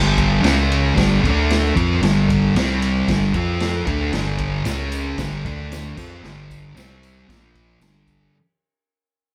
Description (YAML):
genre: garage rock duo or trio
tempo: 114 BPM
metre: 4/4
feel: straight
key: unclear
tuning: A4 = 440 Hz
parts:
  - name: thick fuzz guitar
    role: riff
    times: 0.0-8.3 s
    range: G2 to F4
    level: -21 LUFS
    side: equal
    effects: distortion
  - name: pure sine sub bass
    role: bass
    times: 0.0-8.3 s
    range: G1 to F2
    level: -27 LUFS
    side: equal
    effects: none
  - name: vintage drum kit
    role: drums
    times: 0.2-8.2 s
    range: crash cymbal, kick drum, ride cymbal, snare drum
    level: -26 LUFS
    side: equal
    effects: none
  - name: tambourine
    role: percussion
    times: 4.2-8.2 s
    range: none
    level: -49 LUFS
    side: equal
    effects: none
room: moderate studio ambience, RT60 0.5 s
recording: band playing live in one room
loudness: -19 LUFS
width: mono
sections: 0.0-8.3 A section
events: fade-out 0.0-8.3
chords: 0.4 C#5; 1.0 G5; 1.2 D5; 1.8 G5; 2.5 C5; 3.1 G5; 3.3 F5; 3.9 G5; 4.7 C#5; 5.2 G5; 5.4 D5; 6.0 G5; 6.8 C5; 7.3 Bb5; 7.8 G5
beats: 0.44 0.97 1.50 | 2.02 2.55 3.08 3.60 | 4.13 4.66 5.18 5.71 | 6.23 6.76 7.29 7.81